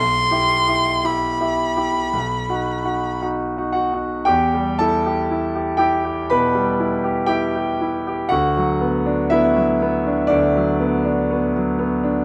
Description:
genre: classical, romantic duo for violin and grand piano.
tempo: 54-61 BPM.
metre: 4/4.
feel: rubato.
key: E minor.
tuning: A4 = 438 Hz.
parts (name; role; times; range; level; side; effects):
rich violin; melody; 0.0-3.2 s; B5 to C6; -22 LUFS; equal; none.
bright concert grand piano; accompaniment; 0.0-12.2 s; B1 to B5; -20 LUFS; equal; none.
room: light reverb.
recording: close, detailed microphones.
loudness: -20 LUFS.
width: mono.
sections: 0.0-4.3 A section; 4.3-12.2 B section.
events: none.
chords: 0.0 Em/B; 2.1 B; 4.3 Em; 8.3 Bm/D.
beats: 1.04 2.14 3.22 | 4.29 5.31 6.31 7.31 | 8.31 9.31 10.31 11.29.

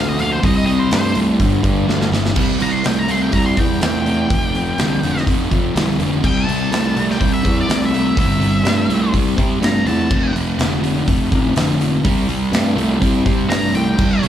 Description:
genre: blues rock power trio and southern rock.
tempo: 124 BPM.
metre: 4/4.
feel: straight.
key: C major.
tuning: A4 = 440 Hz.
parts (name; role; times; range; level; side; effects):
octave-fuzz lead guitar; melody; 0.0-10.3, 13.5-14.2 s; C5 to C6; -23 LUFS; left 1 dB; wah, distortion.
fuzz guitar; riff; 0.0-14.3 s; F2 to A3; -18 LUFS; equal; distortion.
fuzz picked electric bass; bass; 0.0-14.3 s; F1 to C3; -20 LUFS; equal; overdrive.
big rock drum kit; drums; 0.2-14.3 s; crash cymbal, hi-hat, kick drum, snare drum; -20 LUFS; equal; none.
room: small room ambience.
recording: live gig heard through the venue's PA, club reverb.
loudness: -14 LUFS.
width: side -10 dB against mid.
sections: 0.0-2.4 A section; 2.4-14.3 A section.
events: lead electric guitar solo 0.0-14.3; drum fill 1.9-2.4.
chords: 0.4 C5; 1.4 G5; 2.4 C; 4.3 F5; 6.2 C; 10.1 F5; 12.1 C5.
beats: | 0.43 0.92 1.40 1.89 | 2.37 2.85 3.34 3.82 | 4.30 4.79 5.27 5.76 | 6.24 6.72 7.21 7.69 | 8.18 8.66 9.14 9.63 | 10.11 10.60 11.08 11.57 | 12.05 12.54 13.02 13.51 | 13.99.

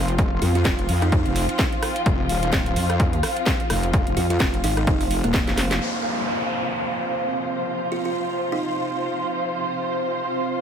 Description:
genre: bass house.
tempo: 128 BPM.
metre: 4/4.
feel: swing 57% on 16ths.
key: unclear.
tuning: A4 = 440 Hz.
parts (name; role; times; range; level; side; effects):
dark studio string section; sustained chords; 0.0-10.6 s; C3 to C5; -30 LUFS; left 3 dB; sidechain pumping.
wobble bass; bass; 0.0-5.8 s; Eb1 to F2; -23 LUFS; equal; chorus, overdrive, sidechain pumping.
ethereal airy pad; texture; 0.0-10.6 s; C4 to C6; -27 LUFS; right 2 dB; ensemble chorus, built-in reverb, sidechain pumping.
house drum kit; drums; 0.1-5.8 s; hi-hat, rim click, snare drum; -26 LUFS; equal; small room ambience.
electronic kick drum; drums; 0.2-5.4 s; none; -23 LUFS; equal; overdrive, small room ambience.
buzzing kalimba; melody; 0.4-9.2 s; Bb3 to F4; -30 LUFS; right 2 dB; none.
downlifter; sound effects; 5.8-9.6 s; none; -29 LUFS; equal; none.
room: light reverb.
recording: none.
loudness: -20 LUFS.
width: side -8 dB against mid.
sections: 0.0-5.8 A section; 5.8-10.6 B section.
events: drum fill 5.5-5.8; band accent 5.7.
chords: 0.0 F5.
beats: | 0.18 0.65 1.12 1.59 | 2.06 2.53 3.00 3.47 | 3.94 4.40 4.87 5.34 | 5.81 6.28 6.75 7.22 | 7.68 8.15 8.62 9.09 | 9.56 10.03 10.50.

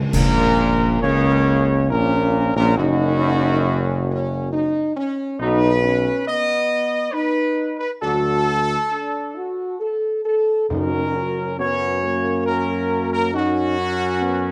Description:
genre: classical, ceremonial fanfare.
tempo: 68 BPM.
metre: 3/4.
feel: straight.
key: F# major.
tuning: A4 = 436 Hz.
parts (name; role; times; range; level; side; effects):
timpani; percussion; 0.0-0.1, 10.7-12.0 s; F#2 to C#3; -30 LUFS; equal; none.
dark trumpet section; melody; 0.1-14.5 s; F#4 to D#5; -24 LUFS; equal; none.
mellow French horn section; sustained chords; 0.1-14.5 s; A#3 to A4; -26 LUFS; equal; none.
warm trombone section; sustained chords; 0.1-14.5 s; F#2 to D#4; -28 LUFS; equal; none.
warm tuba; bass; 0.1-14.5 s; F#1 to F#2; -24 LUFS; equal; none.
clash cymbals and concert bass drum; percussion; 0.1-1.9 s; none; -27 LUFS; equal; none.
room: moderate large studio reverb, RT60 1.2 s.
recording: none.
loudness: -20 LUFS.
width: mono.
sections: 0.1-14.5 A section.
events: band accent 0.1-1.0.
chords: 0.1 F#/A#; 5.4 B; 8.0 D; 10.7 F#.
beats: | 0.13 1.02 1.91 | 2.78 3.66 4.53 | 5.40 6.26 7.14 | 8.02 8.91 9.81 | 10.70 11.59 12.47 | 13.34 14.22.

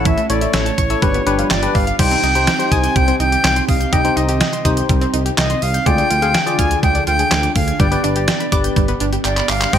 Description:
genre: synth-pop.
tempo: 124 BPM.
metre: 4/4.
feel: straight.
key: C minor.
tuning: A4 = 440 Hz.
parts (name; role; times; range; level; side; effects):
bright reedy silver concert flute; melody; 0.0-9.8 s; C#5 to Ab5; -19 LUFS; right 1 dB; digital delay.
bell-like tine electric piano; accompaniment; 0.0-9.8 s; D4 to F5; -22 LUFS; left 5 dB; analog chorus.
string machine, cellos; sustained chords; 0.0-9.8 s; C3 to B4; -24 LUFS; equal; ensemble chorus.
smooth synth bass; bass; 0.0-9.8 s; G1 to D2; -20 LUFS; equal; none.
analog pluck; arpeggios; 0.1-9.8 s; E3 to Ab6; -25 LUFS; right 3 dB; chorus, digital delay.
detuned 8-bit digital drum machine; drums; 0.1-9.8 s; crash cymbal, handclaps, hi-hat, kick drum, snare drum; -18 LUFS; equal; none.
room: light reverb.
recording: bright 1980s-style digital production.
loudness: -13 LUFS.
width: side -9 dB against mid.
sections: 0.0-2.0 A section; 2.0-9.8 B section.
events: drum fill 9.2-9.7.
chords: 0.0 A; 1.0 G7; 2.0 Cm; 5.9 Ddim; 7.8 G.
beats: | 0.06 0.54 1.02 1.51 | 1.99 2.48 2.96 3.44 | 3.93 4.41 4.89 5.38 | 5.86 6.35 6.83 7.31 | 7.80 8.28 8.77 9.25 | 9.73.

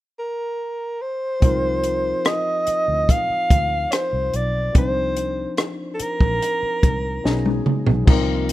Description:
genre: lush 1970s-style soul.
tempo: 72 BPM.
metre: 4/4.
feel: straight.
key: unclear.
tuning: A4 = 441 Hz.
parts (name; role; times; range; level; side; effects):
warm alto saxophone; melody; 0.2-7.7 s; A4 to F5; -22 LUFS; equal; none.
barky tine electric piano; accompaniment; 1.4-8.5 s; F3 to C5; -27 LUFS; left 3 dB; overdrive, lush chorus.
vintage muted fingered electric bass; bass; 1.4-8.5 s; Bb1 to D2; -25 LUFS; equal; none.
compact cocktail drum kit; drums; 1.4-8.5 s; crash cymbal, hi-hat, kick drum, rim click, snare drum, toms; -17 LUFS; equal; none.
string machine, violins; sustained chords; 8.1-8.5 s; C3 to F4; -30 LUFS; left 5 dB; none.
room: studio ambience.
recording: rough home demo mix.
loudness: -18 LUFS.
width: side -15 dB against mid.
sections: 0.0-1.4 A section; 1.4-8.1 B section.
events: drum fill 7.2-8.1.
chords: 0.0 N.C.; 1.4 Cm11; 7.2 B69.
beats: 0.59 | 1.42 2.26 3.09 3.92 | 4.75 5.59 6.42 7.25 | 8.08.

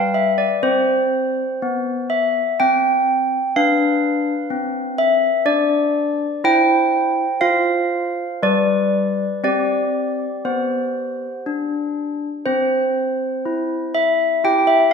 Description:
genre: classical, tune for handbells.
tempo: 61 BPM.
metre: 3/4.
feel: straight.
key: C major.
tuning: A4 = 440 Hz.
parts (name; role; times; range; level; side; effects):
handbells; solo; 0.0-14.9 s; G3 to G5; -16 LUFS; equal; none.
room: wet recital hall reverb, RT60 1.7 s.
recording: heard from further back in the room.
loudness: -16 LUFS.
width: side -6 dB against mid.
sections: 0.0-12.5 A section; 12.5-14.9 A section.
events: none.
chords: 0.0 G; 0.6 C5; 3.6 Cmaj9; 6.5 C/E; 7.4 F5; 8.4 G; 9.4 C5; 12.5 C.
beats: | 0.61 1.60 2.58 | 3.55 4.50 5.46 | 6.45 7.43 8.43 | 9.44 10.45 11.46 | 12.48 13.47 14.45.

